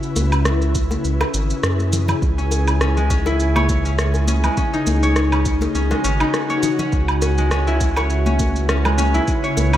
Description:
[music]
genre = organic downtempo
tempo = 102 BPM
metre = 4/4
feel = swing 55% on 16ths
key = unclear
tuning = A4 = 440 Hz
[part]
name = ethereal airy pad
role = sustained chords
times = 0.0-9.8 s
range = C#3 to B4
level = -24 LUFS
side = equal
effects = ensemble chorus, built-in reverb, sidechain pumping
[part]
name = electronic shaker, woodblock and rim click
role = drums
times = 0.0-9.8 s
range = none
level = -25 LUFS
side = right 1 dB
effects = none
[part]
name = round analog bass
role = bass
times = 0.2-9.8 s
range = G#1 to F#2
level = -19 LUFS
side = equal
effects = sidechain pumping
[part]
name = congas and bongos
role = percussion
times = 0.2-9.7 s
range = none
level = -28 LUFS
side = left 2 dB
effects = none
[part]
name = electronic kick drum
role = drums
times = 0.8-9.4 s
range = none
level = -22 LUFS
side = equal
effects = none
[part]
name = concert harp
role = arpeggios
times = 2.4-9.8 s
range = G#3 to C#5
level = -21 LUFS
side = left 1 dB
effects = tape echo
[sound]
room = moderate lush hall reverb, RT60 1.6 s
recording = dreamy mix soaked in reverb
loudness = -16 LUFS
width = side -12 dB against mid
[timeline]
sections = 0.0-9.8 A section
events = none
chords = 0.0 C#m7; 2.2 E/C#; 4.6 B/C#; 6.9 E69/C#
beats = 0.46 1.05 1.63 | 2.22 2.81 3.40 3.99 | 4.58 5.16 5.75 6.34 | 6.93 7.52 8.10 8.69 | 9.28

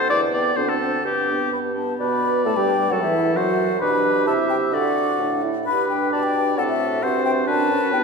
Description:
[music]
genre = quick classical-period movement for wind quintet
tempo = 131 BPM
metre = 2/4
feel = rubato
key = G major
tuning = A4 = 439 Hz
[part]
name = mellow hollow concert flute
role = melody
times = 0.0-8.0 s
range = E5 to B5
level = -24 LUFS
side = left 6 dB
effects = none
[part]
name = warm oboe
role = second line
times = 0.0-8.0 s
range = G4 to E5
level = -24 LUFS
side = left 2 dB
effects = none
[part]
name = clear French horn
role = accompaniment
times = 0.0-8.0 s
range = E3 to E4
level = -26 LUFS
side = right 2 dB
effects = none
[part]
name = warm clarinet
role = accompaniment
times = 0.0-8.0 s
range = B3 to B4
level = -27 LUFS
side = right 7 dB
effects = none
[part]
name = mellow bassoon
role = bass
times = 0.0-8.0 s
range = D2 to D3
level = -24 LUFS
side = right 1 dB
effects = none
[sound]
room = wet church reverb, RT60 2.6 s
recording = recorded in a church or concert hall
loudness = -18 LUFS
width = side -4 dB against mid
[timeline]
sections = 0.0-2.0 A section; 2.0-8.0 B section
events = none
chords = 0.1 Em; 0.6 D7; 1.0 G; 2.0 G/B; 2.9 F#dim; 3.8 G/B; 4.3 Am7/C (rootless); 4.7 D; 5.7 G; 6.6 F#dim/A; 7.5 D/F#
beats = | 0.11 0.57 | 1.05 1.52 | 2.00 2.46 | 2.92 3.37 | 3.81 4.27 | 4.73 5.20 | 5.67 6.13 | 6.58 7.03 | 7.48 7.93

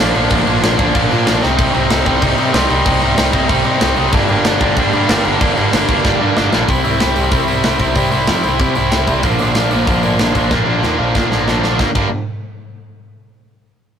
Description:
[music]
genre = punk rock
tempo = 188 BPM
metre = 4/4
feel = straight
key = unclear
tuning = A4 = 440 Hz
[part]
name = biting overdriven guitar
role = riff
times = 0.0-12.1 s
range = G2 to E4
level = -14 LUFS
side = equal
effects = none
[part]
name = fuzz picked electric bass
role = bass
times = 0.0-12.1 s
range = G1 to C3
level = -19 LUFS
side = equal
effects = overdrive
[part]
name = tight metal drum kit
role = drums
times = 0.1-12.0 s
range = crash cymbal, hi-hat, kick drum, snare drum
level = -18 LUFS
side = equal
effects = none
[sound]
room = light reverb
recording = rough rehearsal-room recording, tube saturation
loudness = -12 LUFS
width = side -8 dB against mid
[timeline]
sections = 0.0-6.7 A section; 6.7-11.8 B section; 11.8-13.1 C section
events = drum fill 1.4, 6.0-6.7, 10.5-11.8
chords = 0.0 Bb; 1.4 Cm; 4.1 Gm; 6.7 C; 9.2 Bb; 11.8 Gm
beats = | 0.31 0.63 0.95 1.27 | 1.59 1.90 2.22 2.54 | 2.86 3.18 3.50 3.81 | 4.13 4.45 4.77 5.09 | 5.40 5.72 6.04 6.36 | 6.68 7.00 7.32 7.63 | 7.95 8.27 8.59 8.91 | 9.23 9.55 9.87 10.19 | 10.51 10.83 11.15 11.47 | 11.79

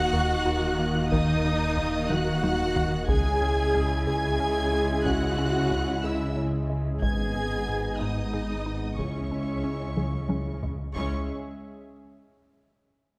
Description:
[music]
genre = cinematic, hybrid orchestral and electronic film score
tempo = 61 BPM (dotted quarters)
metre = 6/8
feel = straight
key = C# dorian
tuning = A4 = 440 Hz
[part]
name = rich symphonic violin section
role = melody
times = 0.0-11.3 s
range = C#6 to G#6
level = -38 LUFS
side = equal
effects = none
[part]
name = warm symphonic violin section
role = second line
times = 0.0-11.3 s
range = C#5 to G#5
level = -37 LUFS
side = equal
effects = none
[part]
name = warm symphonic viola section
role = accompaniment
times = 0.0-11.3 s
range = C#4 to G#4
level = -33 LUFS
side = equal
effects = none
[part]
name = mellow French horn section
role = sustained chords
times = 0.0-11.2 s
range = G#3 to E4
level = -38 LUFS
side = equal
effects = none
[part]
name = warm analog pad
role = sustained chords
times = 0.0-11.3 s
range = D#3 to E5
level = -38 LUFS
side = equal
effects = chorus
[part]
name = pure sine sub bass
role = bass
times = 0.0-11.3 s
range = D#1 to C#2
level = -38 LUFS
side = equal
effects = none
[part]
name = warm symphonic cello section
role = bass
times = 0.0-11.3 s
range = G#2 to D#3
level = -36 LUFS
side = equal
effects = none
[part]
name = warm symphonic double bass section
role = bass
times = 0.0-11.3 s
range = G#1 to D#2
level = -36 LUFS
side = equal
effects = none
[part]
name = woody wave-folded pluck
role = arpeggios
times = 0.1-10.8 s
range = C#3 to G#4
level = -39 LUFS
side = equal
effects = none
[part]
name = smooth synth bass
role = riff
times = 0.1-10.8 s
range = C#2 to G#3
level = -37 LUFS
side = equal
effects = none
[part]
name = taiko ensemble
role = drums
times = 1.1-12.2 s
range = none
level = -34 LUFS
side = equal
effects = none
[sound]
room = moderate scoring stage reverb, RT60 1.7 s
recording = none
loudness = -27 LUFS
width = mono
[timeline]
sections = 0.0-11.0 A section; 11.0-12.9 B section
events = drum fill 2.1-3.1, 10.0-11.0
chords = 0.0 D#m; 3.1 C#m; 7.0 G#m; 9.0 C#m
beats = 0.14 | 1.12 2.10 | 3.09 4.07 | 5.05 6.04 | 7.02 8.01 | 8.99 9.97 | 10.96 11.94

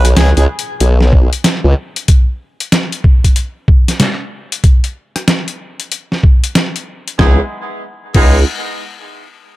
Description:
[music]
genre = glitch hop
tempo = 94 BPM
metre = 4/4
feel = swing 63% on 16ths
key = C# minor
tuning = A4 = 438 Hz
[part]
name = formant-sweep wobble bass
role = bass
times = 0.0-1.7, 7.2-8.4 s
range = B1 to C#2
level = -10 LUFS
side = equal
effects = chorus
[part]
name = boom bap sampler-style drum kit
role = drums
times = 0.0-8.3 s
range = crash cymbal, hi-hat, rim click, snare drum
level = -15 LUFS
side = equal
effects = none
[part]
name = downlifter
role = sound effects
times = 0.6-2.1 s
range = none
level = -40 LUFS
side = equal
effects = none
[part]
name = electronic kick drum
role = drums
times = 1.1-8.3 s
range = none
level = -9 LUFS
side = equal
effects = none
[part]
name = warm horn section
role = stabs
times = 7.2-8.4 s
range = G#3 to G#4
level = -19 LUFS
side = right 1 dB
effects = sidechain pumping, analog delay
[sound]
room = little or no reverb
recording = echo-heavy mix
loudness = -10 LUFS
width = side -17 dB against mid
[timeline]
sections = 0.0-7.2 A section; 7.2-9.6 B section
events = none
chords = 0.0 C#7(no3); 2.1 N.C.; 7.2 C#m7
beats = 0.17 0.81 1.44 | 2.08 2.72 3.36 4.00 | 4.63 5.27 5.91 6.55 | 7.19 7.83

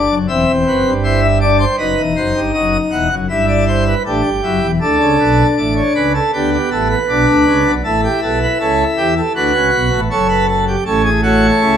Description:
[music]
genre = classical, baroque-style 4-part fugue for pipe organ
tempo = 80 BPM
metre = 4/4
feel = straight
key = E minor, D major from 4.8 s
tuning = A4 = 440 Hz
[part]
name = pipe organ, plenum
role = solo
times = 0.0-11.8 s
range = E1 to F#5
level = -12 LUFS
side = equal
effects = none
[sound]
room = wet stone room reverb, RT60 1.2 s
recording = none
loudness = -12 LUFS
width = side -8 dB against mid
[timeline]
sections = 0.0-4.8 A section; 4.8-11.8 B section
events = none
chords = 0.3 Cmaj9#11/E; 1.8 B; 3.3 Em/G; 4.8 D5; 6.3 G; 7.8 A7; 9.4 D; 10.9 A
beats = 0.28 1.03 | 1.78 2.54 3.29 4.05 | 4.81 5.58 6.34 7.09 | 7.85 8.60 9.35 10.10 | 10.86 11.61

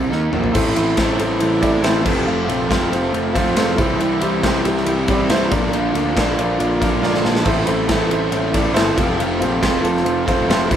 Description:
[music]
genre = classic rock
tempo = 139 BPM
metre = 4/4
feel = straight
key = unclear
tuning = A4 = 441 Hz
[part]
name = crunchy overdriven guitar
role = riff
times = 0.0-10.8 s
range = F2 to F4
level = -22 LUFS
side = right 5 dB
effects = none
[part]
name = overdriven semi-hollow guitar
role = riff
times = 0.0-10.8 s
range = F2 to F4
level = -21 LUFS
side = left 4 dB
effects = none
[part]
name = fuzz picked electric bass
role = bass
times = 0.0-10.8 s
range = F1 to Eb2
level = -24 LUFS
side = equal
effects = overdrive
[part]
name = gated 80s drum kit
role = drums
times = 0.1-10.8 s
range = crash cymbal, kick drum, ride cymbal, snare drum, toms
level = -21 LUFS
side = equal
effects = none
[part]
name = clear upright piano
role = accompaniment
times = 0.5-10.8 s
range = E4 to A5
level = -23 LUFS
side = right 2 dB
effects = none
[sound]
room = moderate large studio reverb, RT60 1.2 s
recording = band playing live in one room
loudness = -15 LUFS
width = side -9 dB against mid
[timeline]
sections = 0.5-10.8 A section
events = drum fill 0.1-0.5, 7.0-7.5; upright piano fill 6.6-7.5, 9.6-10.8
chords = 0.0 C5; 0.5 Am; 2.1 F; 3.8 C; 5.5 Bb; 7.5 Am; 9.0 F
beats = 0.10 | 0.54 0.97 1.40 1.83 | 2.27 2.70 3.13 3.56 | 4.00 4.43 4.86 5.29 | 5.73 6.16 6.59 7.02 | 7.46 7.89 8.32 8.76 | 9.19 9.62 10.05 10.49

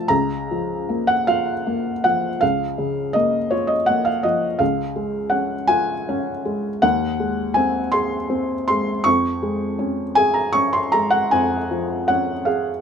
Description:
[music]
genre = classical, romantic nocturne for solo piano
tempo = 50-57 BPM (dotted quarters)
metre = 12/8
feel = rubato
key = unclear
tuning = A4 = 441 Hz
[part]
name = felt-muted upright piano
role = solo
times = 0.0-12.8 s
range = Db2 to Db6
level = -18 LUFS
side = equal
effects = none
[sound]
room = light reverb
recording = minimal, uncompressed stereo recording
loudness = -18 LUFS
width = side -7 dB against mid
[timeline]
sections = 0.0-12.8 A section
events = none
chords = 0.1 Bbm/Db; 4.6 Db; 6.8 Ab7/Eb; 9.1 Db/F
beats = | 0.10 1.28 2.42 3.52 | 4.61 5.70 6.83 7.95 | 9.06 10.18 11.34 12.47

